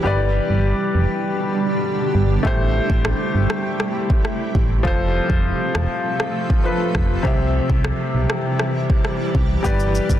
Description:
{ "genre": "dancehall", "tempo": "100 BPM", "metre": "4/4", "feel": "straight", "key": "unclear", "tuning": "A4 = 440 Hz", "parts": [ { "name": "clear grand piano", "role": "accompaniment", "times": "0.0-10.2 s", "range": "C3 to E5", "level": "-23 LUFS", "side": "left 3 dB", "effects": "none" }, { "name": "granular cloud pad", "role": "sustained chords", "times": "0.0-10.2 s", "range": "B2 to A4", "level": "-24 LUFS", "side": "right 2 dB", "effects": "built-in reverb, sidechain pumping" }, { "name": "solid FM bass", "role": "bass", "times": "0.0-10.2 s", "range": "E1 to C2", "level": "-20 LUFS", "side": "equal", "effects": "none" }, { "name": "afro-pop drum kit", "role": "drums", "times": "2.4-10.2 s", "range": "kick drum, rim click, shaker", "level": "-21 LUFS", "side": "equal", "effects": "soft clipping on snare" } ], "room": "light reverb, digital ambience", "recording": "dense, heavily limited modern master", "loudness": "-17 LUFS", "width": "side -12 dB against mid", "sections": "0.0-10.2 A section", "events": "none", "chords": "0.0 G; 2.4 Am7; 4.8 F; 7.2 C; 9.6 G" }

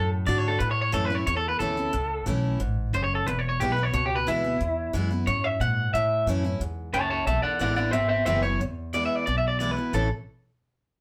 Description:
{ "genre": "rockabilly", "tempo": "180 BPM", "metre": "4/4", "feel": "straight", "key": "A major", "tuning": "A4 = 440 Hz", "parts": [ { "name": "electric guitar through a small old amp", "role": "melody", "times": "0.0-10.1 s", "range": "E4 to A5", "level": "-28 LUFS", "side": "equal", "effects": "none" }, { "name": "picked steel-string acoustic guitar", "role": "accompaniment", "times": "0.0-10.1 s", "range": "E2 to F#4", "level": "-33 LUFS", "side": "equal", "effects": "none" }, { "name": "upright bass", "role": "bass", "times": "0.0-10.1 s", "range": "E1 to Bb2", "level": "-30 LUFS", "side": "equal", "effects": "none" } ], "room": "moderate studio reverb, RT60 0.5 s", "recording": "band playing live in one room", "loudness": "-26 LUFS", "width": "mono", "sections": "0.0-8.6 A section; 8.6-9.9 B section; 9.9-11.0 C section", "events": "none", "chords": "0.0 D; 0.6 A; 3.3 E; 5.9 A; 7.3 E; 9.9 A" }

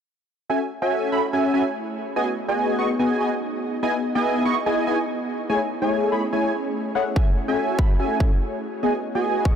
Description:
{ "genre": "future bass", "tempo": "144 BPM", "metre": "4/4", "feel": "swing 55% on 16ths, half-time", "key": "F# dorian", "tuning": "A4 = 440 Hz", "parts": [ { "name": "ethereal airy pad", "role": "sustained chords", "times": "1.0-9.6 s", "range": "A3 to D#5", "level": "-30 LUFS", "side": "equal", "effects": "ensemble chorus, built-in reverb, sidechain pumping" }, { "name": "big bright polysynth", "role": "riff", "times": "0.5-9.5 s", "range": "A3 to C#6", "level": "-22 LUFS", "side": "equal", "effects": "analog chorus, sidechain pumping, tape echo" }, { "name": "electronic kick drum", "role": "drums", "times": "7.2-9.5 s", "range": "none", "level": "-19 LUFS", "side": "equal", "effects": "none" } ], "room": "light reverb, digital ambience", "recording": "none", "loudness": "-20 LUFS", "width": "side -8 dB against mid", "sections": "0.5-9.6 A section", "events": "none", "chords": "0.5 F#m9; 2.2 G#m7; 3.8 Emaj7; 5.5 Amaj7; 8.8 G#m7" }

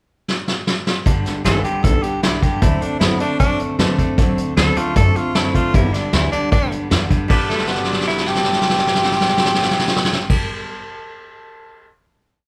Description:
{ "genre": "rockabilly", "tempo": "154 BPM", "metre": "4/4", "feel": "straight", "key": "G major", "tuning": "A4 = 440 Hz", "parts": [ { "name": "vintage brush drum kit", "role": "drums", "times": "0.3-11.9 s", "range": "crash cymbal, hi-hat, kick drum, snare drum", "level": "-21 LUFS", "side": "equal", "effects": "none" }, { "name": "picked steel-string acoustic guitar", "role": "accompaniment", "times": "1.1-10.9 s", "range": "G2 to A4", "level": "-29 LUFS", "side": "equal", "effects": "none" }, { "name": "twangy electric guitar", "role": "riff", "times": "1.1-10.8 s", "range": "G2 to B4", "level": "-28 LUFS", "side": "equal", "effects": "none" }, { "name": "upright bass", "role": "bass", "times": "1.1-10.3 s", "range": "G1 to D3", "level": "-25 LUFS", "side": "equal", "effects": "none" }, { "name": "clear tenor saxophone", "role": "melody", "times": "1.4-10.3 s", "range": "A3 to A4", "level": "-23 LUFS", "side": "equal", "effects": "none" } ], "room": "light reverb", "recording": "band playing live in one room", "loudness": "-18 LUFS", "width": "mono", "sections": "0.0-1.1 pickup bar; 1.1-7.3 A section; 7.3-10.4 final chord", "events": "drum fill 0.3-1.1, 7.5-10.3", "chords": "0.0 N.C.; 1.1 G; 2.6 D7; 5.7 G" }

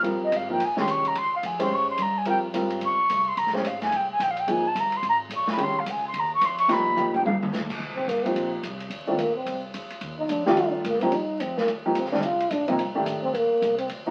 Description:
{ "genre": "modal jazz", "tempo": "217 BPM", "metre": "4/4", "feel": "swing 61% on 8ths", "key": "Bb dorian, C dorian from 7.8 s", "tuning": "A4 = 440 Hz", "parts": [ { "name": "dark baby grand piano", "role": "accompaniment", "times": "0.0-14.1 s", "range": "C3 to C5", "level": "-28 LUFS", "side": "equal", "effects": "none" }, { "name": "upright bass", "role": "bass", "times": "0.0-14.1 s", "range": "D1 to A2", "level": "-40 LUFS", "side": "equal", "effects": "none" }, { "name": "swinging big-band drum kit", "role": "drums", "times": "0.0-14.0 s", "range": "crash cymbal, hi-hat, kick drum, ride cymbal, snare drum, toms", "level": "-36 LUFS", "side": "equal", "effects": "none" }, { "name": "mellow silver concert flute", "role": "melody", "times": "0.2-7.4 s", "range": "Db5 to Db6", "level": "-26 LUFS", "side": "equal", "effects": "none" }, { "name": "trombone with cup mute", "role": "second line", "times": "8.0-13.9 s", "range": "Bb3 to G4", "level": "-27 LUFS", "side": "equal", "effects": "none" } ], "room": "moderate studio ambience, RT60 0.5 s", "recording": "very old 78 rpm record, vinyl crackle", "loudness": "-25 LUFS", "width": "mono", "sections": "0.0-7.8 A section; 7.8-14.1 A section", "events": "flute solo 0.0-7.8; drum fill 7.0-7.5; trombone solo 7.8-14.1", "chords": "0.0 Bbm11; 3.4 Fmadd9; 6.7 G7alt; 7.8 Cm11; 12.2 Bb" }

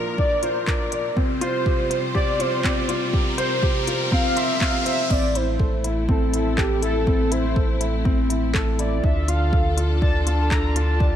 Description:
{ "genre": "piano and strings electronica", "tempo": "122 BPM", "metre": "4/4", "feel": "straight", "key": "unclear", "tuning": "A4 = 439 Hz", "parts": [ { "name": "warm studio string section", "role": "sustained chords", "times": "0.0-11.2 s", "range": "Bb2 to C5", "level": "-30 LUFS", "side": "equal", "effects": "none" }, { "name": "dark baby grand piano", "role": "riff", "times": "0.0-11.2 s", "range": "C4 to C6", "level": "-26 LUFS", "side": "left 2 dB", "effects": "ping-pong delay" }, { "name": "riser", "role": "sound effects", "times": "0.0-5.1 s", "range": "none", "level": "-30 LUFS", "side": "equal", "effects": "none" }, { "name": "warm velvety synth lead", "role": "melody", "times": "0.2-11.2 s", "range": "G4 to Bb5", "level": "-26 LUFS", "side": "equal", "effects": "chorus, ping-pong delay" }, { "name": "electronic kick drum", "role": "drums", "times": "0.2-11.1 s", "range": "none", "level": "-22 LUFS", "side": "equal", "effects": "overdrive" }, { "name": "organic electronic drum kit", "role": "drums", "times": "0.4-10.9 s", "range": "crash cymbal, handclaps, hi-hat", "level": "-29 LUFS", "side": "left 1 dB", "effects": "high-pass filter on hats, high-pass filter on snare, high-pass filter on cymbals, high-pass filter on room" }, { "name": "warm sub bass", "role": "bass", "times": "5.1-11.2 s", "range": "A1 to D2", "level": "-23 LUFS", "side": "equal", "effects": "sidechain pumping" } ], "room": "light reverb, digital ambience", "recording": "none", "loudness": "-19 LUFS", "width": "side -10 dB against mid", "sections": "0.0-5.1 A section; 5.1-11.2 B section", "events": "build-up 0.0-5.1; riser 0.0-5.1; drop 5.1-11.2", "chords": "0.0 Bb; 1.2 Csus4; 5.1 Am; 9.0 Dm" }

